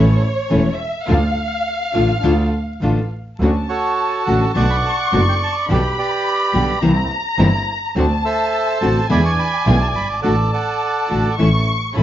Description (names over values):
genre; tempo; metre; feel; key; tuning
tango; 105 BPM; 4/4; rubato; D minor, D major from 3.4 s; A4 = 440 Hz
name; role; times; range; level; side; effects
dark studio violin section; second line; 0.0-12.0 s; C#5 to C#6; -23 LUFS; left 2 dB; none
nylon-string guitar; accompaniment; 0.0-12.0 s; B2 to G4; -18 LUFS; left 2 dB; none
warm chamber string section; stabs; 0.0-12.0 s; Bb3 to A4; -27 LUFS; right 2 dB; none
clear double bass; bass; 0.0-12.0 s; E1 to E2; -18 LUFS; right 1 dB; none
bandoneon; melody; 3.7-11.4 s; F#4 to C#6; -20 LUFS; right 3 dB; plate reverb
room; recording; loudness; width
light reverb; vinyl crackle, nothing above 7.5 kHz; -15 LUFS; side -12 dB against mid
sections
0.0-3.4 A section; 3.4-12.0 B section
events
violin section solo 0.0-3.4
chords
0.0 A; 1.1 Dm; 3.4 Dmaj7; 4.6 Bm7; 5.7 G/B; 6.8 C7; 8.0 D7; 9.1 E7; 10.2 D/A; 11.4 A